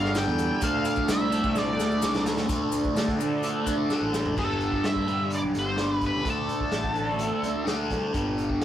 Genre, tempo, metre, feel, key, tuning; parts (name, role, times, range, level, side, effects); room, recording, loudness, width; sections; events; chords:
psychedelic rock; 128 BPM; 4/4; straight; A4 = 440 Hz
octave-fuzz lead guitar; melody; 0.0-7.7 s; A4 to G5; -29 LUFS; equal; wah, distortion
hand-pumped harmonium; sustained chords; 0.0-4.4 s; F3 to D5; -36 LUFS; right 6 dB
fuzz guitar; riff; 0.0-8.6 s; G2 to D4; -26 LUFS; equal; distortion, phaser
fuzz fingered electric bass; bass; 0.0-8.6 s; G1 to D3; -33 LUFS; equal; overdrive
raw garage drum kit; drums; 0.0-8.6 s; crash cymbal, hi-hat, kick drum, snare drum, toms; -32 LUFS; equal
maracas; percussion; 0.1-4.2 s; -42 LUFS; left 6 dB
light reverb; rough rehearsal-room recording; -24 LUFS; side -11 dB against mid
0.0-2.5 A section; 2.5-4.4 B section; 4.4-8.6 C section
drum fill 1.6-2.5, 3.9-4.4
0.0 Gadd9; 0.6 Dm; 4.4 Gsus2; 6.3 D5; 8.1 G5